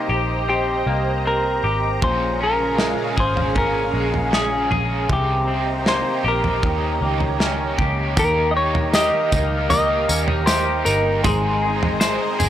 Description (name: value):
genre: dream pop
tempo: 78 BPM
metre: 4/4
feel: straight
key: unclear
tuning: A4 = 441 Hz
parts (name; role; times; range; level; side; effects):
- semi-hollow electric guitar; melody; 0.0-12.5 s; Eb4 to Eb5; -22 LUFS; left 1 dB; none
- lush unison pad; sustained chords; 0.0-12.5 s; Db4 to Bb5; -26 LUFS; right 1 dB; chorus, phaser
- semi-hollow electric guitar; arpeggios; 0.0-12.5 s; Bb2 to C5; -25 LUFS; left 2 dB; wide subtle chorus, analog delay
- vintage muted picked electric bass; bass; 0.1-12.5 s; G1 to Eb2; -25 LUFS; equal; none
- overdriven electric guitar; accompaniment; 2.0-12.5 s; Bb2 to Bb4; -28 LUFS; right 5 dB; harmonic tremolo, lush chorus
- loose indie drum kit; drums; 2.0-12.5 s; kick drum, snare drum, tambourine, toms; -22 LUFS; right 1 dB; none
- drifting glass-harmonics texture; texture; 9.2-12.5 s; F5 to Ab5; -35 LUFS; left 2 dB; none
room: light reverb, small room ambience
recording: dry, gritty hardware recording, transformer saturation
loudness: -17 LUFS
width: side -11 dB against mid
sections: 0.0-8.2 A section; 8.2-12.5 B section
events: none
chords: 0.0 Cm7; 2.0 Bbm7; 5.1 Cm7; 6.6 Eb7; 8.2 Eb; 11.2 Abadd9